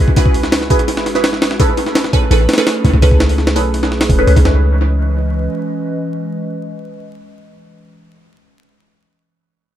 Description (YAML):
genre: drum and bass, jungle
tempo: 168 BPM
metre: 4/4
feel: straight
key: C# minor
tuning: A4 = 444 Hz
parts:
  - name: warbly tape-like pad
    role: sustained chords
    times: 0.0-8.1 s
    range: E3 to D#5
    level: -22 LUFS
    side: right 1 dB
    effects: chorus, built-in reverb
  - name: warm 808-style bass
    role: bass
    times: 0.0-5.5 s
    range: E1 to C#2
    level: -15 LUFS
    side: equal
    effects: none
  - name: jungle sampler-style drum kit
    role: drums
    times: 0.1-4.5 s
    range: hi-hat, kick drum, snare drum, toms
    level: -14 LUFS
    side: equal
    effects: small room ambience, analog delay
  - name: filtered dub chord stab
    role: stabs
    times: 0.2-8.8 s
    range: C#4 to C#5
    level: -19 LUFS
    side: right 2 dB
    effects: phaser, wide subtle chorus, dub echo
room: light reverb, digital ambience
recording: echo-heavy mix, vinyl crackle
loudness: -12 LUFS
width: side -11 dB against mid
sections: 0.0-4.5 A section; 4.5-7.3 B section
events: drop 0.0-4.5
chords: 0.0 F#9sus4; 1.6 Amaj9; 4.5 C#m9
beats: | 0.17 0.52 0.88 1.24 | 1.60 1.95 2.31 2.67 | 3.02 3.38 3.74 4.10 | 4.45 4.81 5.17 5.52 | 5.88 6.24 6.60 6.95